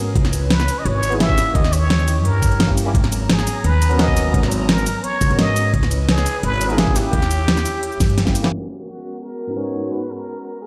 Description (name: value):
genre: liquid drum and bass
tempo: 172 BPM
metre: 4/4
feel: straight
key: G# minor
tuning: A4 = 441 Hz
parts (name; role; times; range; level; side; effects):
- tine electric piano; accompaniment; 0.0-10.0 s; G#2 to A#4; -29 LUFS; equal; overdrive
- dark studio string section; sustained chords; 0.0-10.7 s; E3 to A#5; -32 LUFS; equal; none
- upright bass; bass; 0.0-8.5 s; G#1 to G#2; -22 LUFS; equal; none
- electronic kick drum; drums; 0.2-8.3 s; none; -22 LUFS; equal; none
- pop drum kit; drums; 0.2-10.7 s; crash cymbal, hi-hat, ride cymbal, shaker, snare drum; -24 LUFS; equal; low-pass filter on hats, low-pass filter on snare, low-pass filter on perc, low-pass filter on cymbals
- trumpet with plunger mute; melody; 0.5-10.7 s; F#4 to E5; -26 LUFS; equal; delay
room: light reverb, studio ambience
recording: played on a big sound system in a bare room, stone room reverb, low-pass filter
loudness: -18 LUFS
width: mono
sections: 0.0-8.5 A section; 8.5-10.7 B section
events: drop 0.0-8.5; drum fill 8.0-8.5; band accent 8.4; filter sweep 8.5-10.7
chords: 0.2 C#m7; 1.4 D#7b9; 2.9 G#m11; 5.7 C#m7; 7.0 D#7b9; 8.5 G#m11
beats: | 0.16 0.51 0.85 1.20 | 1.55 1.90 2.25 2.60 | 2.95 3.29 3.64 3.99 | 4.34 4.69 5.04 5.39 | 5.74 6.09 6.43 6.78 | 7.13 7.48 7.83 8.18 | 8.53 8.88 9.23 9.57 | 9.92 10.27 10.62